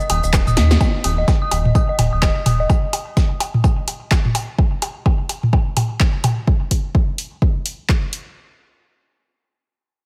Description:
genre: minimal techno.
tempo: 127 BPM.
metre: 4/4.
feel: swing 59% on 16ths.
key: unclear.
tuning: A4 = 440 Hz.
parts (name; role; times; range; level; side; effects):
punchy analog drum machine; drums; 0.0-8.2 s; cabasa, handclaps, hi-hat, snare drum; -26 LUFS; equal; overdrive, studio reverb.
dark detuned synth bell; riff; 0.1-2.6 s; Eb5 to Eb6; -27 LUFS; equal; chorus, phaser, sidechain pumping, low-pass filter, tape echo.
round analog bass; bass; 0.1-2.7 s; Eb1 to Eb2; -20 LUFS; equal; sidechain pumping.
electronic tambourine and snare drum; drums; 0.1-4.5 s; none; -37 LUFS; equal; none.
minimal click drum kit; percussion; 0.1-6.3 s; percussion blips, rim click, toms; -24 LUFS; equal; overdrive, studio reverb.
electronic kick drum; drums; 0.3-8.0 s; none; -19 LUFS; equal; overdrive, studio reverb.
room: light reverb.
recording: none.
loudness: -18 LUFS.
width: mono.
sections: 0.8-8.4 A section.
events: drum fill 0.6; band accent 0.7; filter sweep on analog synth bass 0.8-2.7; filter sweep on synth bell 0.8-2.7.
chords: 0.0 Eb5; 0.8 N.C..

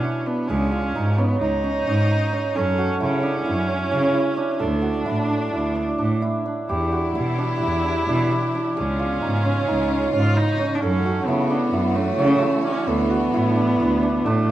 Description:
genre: contemporary instrumental, chamber music in an uneven meter.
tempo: 262 BPM (eighths).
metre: 9/8.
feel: straight.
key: unclear.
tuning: A4 = 441 Hz.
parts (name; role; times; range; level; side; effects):
clear viola; second line; 0.0-14.5 s; A3 to E#4; -25 LUFS; equal; none.
hammered dulcimer; arpeggios; 0.0-14.5 s; C#4 to A4; -23 LUFS; right 2 dB; none.
bright cello; bass; 0.5-14.5 s; C#2 to C#3; -23 LUFS; right 1 dB; none.
clear studio string section; sustained chords; 6.7-14.5 s; C#3 to G4; -31 LUFS; left 4 dB; none.
room: moderate recital hall reverb, RT60 1.3 s.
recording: dark, warm production.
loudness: -19 LUFS.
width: side -13 dB against mid.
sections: 0.0-14.5 A section.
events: none.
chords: 0.5 C#; 2.5 F#m7; 4.6 D; 6.7 Em7; 8.8 C#7; 10.8 F#m7; 12.9 Dadd9.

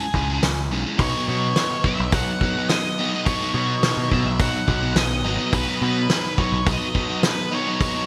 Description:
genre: indie rock.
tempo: 106 BPM.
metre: 4/4.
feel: straight.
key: unclear.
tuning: A4 = 441 Hz.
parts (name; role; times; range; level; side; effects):
octave-fuzz lead guitar; melody; 0.0-8.1 s; G#4 to F#5; -29 LUFS; equal; distortion, digital delay.
crunchy overdriven guitar; riff; 0.0-8.1 s; F#3 to G#4; -29 LUFS; equal; subtle chorus.
growling picked electric bass; bass; 0.1-6.8 s; G#1 to B2; -27 LUFS; equal; overdrive.
loose indie drum kit; drums; 0.1-7.9 s; hi-hat, kick drum, snare drum; -26 LUFS; equal; gated reverb.
biting overdriven guitar; riff; 1.0-8.1 s; F#3 to D#4; -30 LUFS; equal; lush chorus.
room: moderate lush hall reverb, RT60 2.1 s.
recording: bright 1980s-style digital production.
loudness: -22 LUFS.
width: mono.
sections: 0.0-8.1 A section.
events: none.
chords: 0.0 C#m7; 1.0 Badd9.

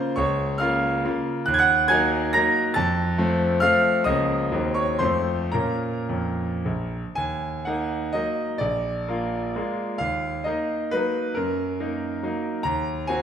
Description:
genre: classical, romantic triple-time dance for piano with dotted rhythms.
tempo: 102-148 BPM.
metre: 3/4.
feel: rubato.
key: Bb minor, Eb minor from 7.2 s.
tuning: A4 = 440 Hz.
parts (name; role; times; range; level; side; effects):
bright concert grand piano; solo; 0.0-13.2 s; Bb1 to Bb6; -21 LUFS; equal; none.
room: wet recital hall reverb, RT60 1.8 s.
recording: none.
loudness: -21 LUFS.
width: side -8 dB against mid.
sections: 0.0-7.2 A section; 7.2-13.2 B section.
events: none.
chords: 0.2 Bbm/Db; 1.5 Ebm; 2.8 F; 4.1 Bbm/Db; 4.5 Cm7b5/Eb; 5.0 F; 5.5 Bbm; 7.2 Ebm; 8.6 Bb7; 10.0 Ebm; 11.4 Ebm/Gb; 12.6 Cm7b5/Eb.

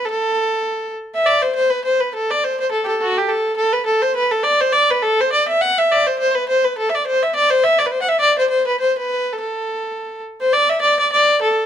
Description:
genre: celtic folk.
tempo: 207 BPM.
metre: 4/4.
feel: swing 56% on 8ths.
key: A dorian.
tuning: A4 = 441 Hz.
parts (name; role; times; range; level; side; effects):
dark fiddle; solo; 0.0-11.7 s; F#4 to F#5; -15 LUFS; equal; none.
room: light reverb.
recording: close, detailed microphones.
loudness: -15 LUFS.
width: side -9 dB against mid.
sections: 0.0-1.3 A section; 1.3-10.5 A section; 10.5-11.7 B section.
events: none.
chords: none.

